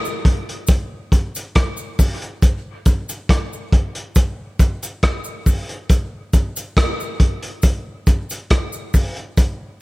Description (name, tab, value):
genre	reggae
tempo	69 BPM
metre	4/4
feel	straight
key	none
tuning	none
part	cabasa	percussion	0.1-9.6 s	none	-32 LUFS	left 1 dB	none
part	crunchy breakbeat drum kit	drums	0.2-9.6 s	hi-hat, kick drum, rim click	-16 LUFS	equal	none
room	light reverb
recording	none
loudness	-17 LUFS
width	side -21 dB against mid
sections	0.0-9.8 A section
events	none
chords	none